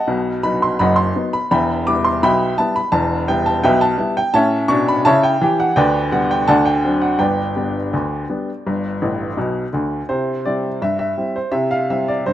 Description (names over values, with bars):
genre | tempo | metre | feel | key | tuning
ragtime piano | 84 BPM | 2/4 | straight | G major | A4 = 442 Hz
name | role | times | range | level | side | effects
clear upright piano | solo | 0.0-12.3 s | E1 to D6 | -15 LUFS | equal | none
room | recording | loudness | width
light reverb, studio ambience | rough home demo mix | -15 LUFS | side -12 dB against mid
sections
0.0-10.1 A section; 10.1-12.3 B section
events
upright piano fill 9.0-10.1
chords
0.1 B; 1.5 Em; 4.3 A7; 5.8 G/D; 6.5 D7; 7.2 G; 10.1 C